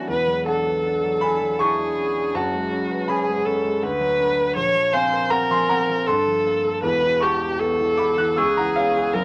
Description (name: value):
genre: classical, impressionist duo for viola and grand piano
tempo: 79 BPM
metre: 3/4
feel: rubato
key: unclear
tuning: A4 = 439 Hz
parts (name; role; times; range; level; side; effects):
- rich viola; melody; 0.0-9.2 s; F#4 to Db5; -23 LUFS; equal; none
- warm grand piano; accompaniment; 0.0-9.2 s; E1 to Gb6; -25 LUFS; equal; none
room: moderate studio reverb, RT60 0.7 s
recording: vinyl crackle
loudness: -21 LUFS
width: mono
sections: 0.0-9.2 A section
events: none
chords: 0.1 E9sus4; 2.3 F#madd9; 3.8 D6; 4.6 Bbsus2; 6.1 Gm9; 6.8 Em7; 8.4 Dbm7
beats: | 0.08 0.84 1.59 | 2.35 3.09 3.82 | 4.56 5.31 6.07 | 6.82 7.59 8.37 | 9.14